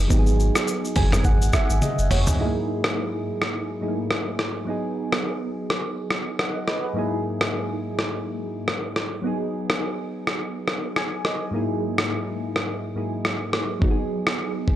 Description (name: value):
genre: afrobeats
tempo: 105 BPM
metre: 4/4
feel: swing 58% on 16ths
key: G# minor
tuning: A4 = 440 Hz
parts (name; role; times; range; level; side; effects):
- soft electric-piano-like synth keys; accompaniment; 0.0-14.8 s; G#2 to G#5; -26 LUFS; right 1 dB; chorus, phaser
- saturated sub bass; bass; 0.0-2.3 s; F#1 to G#1; -21 LUFS; equal; none
- dusty soul sampler-style drum kit; drums; 0.1-14.8 s; hi-hat, kick drum, rim click, shaker, toms; -24 LUFS; equal; none
room: little or no reverb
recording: dry, gritty hardware recording, cassette tape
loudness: -22 LUFS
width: side -12 dB against mid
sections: 0.0-2.4 A section; 2.4-14.8 B section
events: synth keys fill 0.7-2.4, 10.7-11.5; drum fill 1.8-2.4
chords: 0.1 G#m7; 2.4 F#13/G#; 4.7 G#m7; 7.0 F#13/G#; 9.2 G#m7; 11.5 F#13/G#; 13.8 G#m7